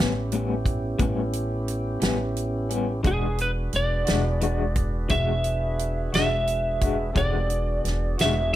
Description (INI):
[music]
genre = slow blues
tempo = 58 BPM (dotted quarters)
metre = 12/8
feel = straight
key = unclear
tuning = A4 = 440 Hz
[part]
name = electric guitar through a small old amp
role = accompaniment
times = 0.0-8.6 s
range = A2 to F#4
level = -28 LUFS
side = left 5 dB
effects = tremolo, plate reverb
[part]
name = tonewheel organ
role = sustained chords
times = 0.0-8.6 s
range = B3 to B4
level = -32 LUFS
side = right 2 dB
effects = slow rotary speaker, plate reverb
[part]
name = upright bass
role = bass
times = 0.0-8.6 s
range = E1 to A1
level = -27 LUFS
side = equal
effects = none
[part]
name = natural country drum kit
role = drums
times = 0.0-8.4 s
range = hi-hat, kick drum, snare drum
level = -27 LUFS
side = right 1 dB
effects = none
[part]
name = lightly driven lead guitar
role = melody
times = 3.1-8.6 s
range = G#4 to E5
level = -26 LUFS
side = right 1 dB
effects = plate reverb
[sound]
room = light reverb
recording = none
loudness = -22 LUFS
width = side -13 dB against mid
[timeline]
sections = 0.0-8.6 A section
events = none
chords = 0.0 A9; 3.0 E9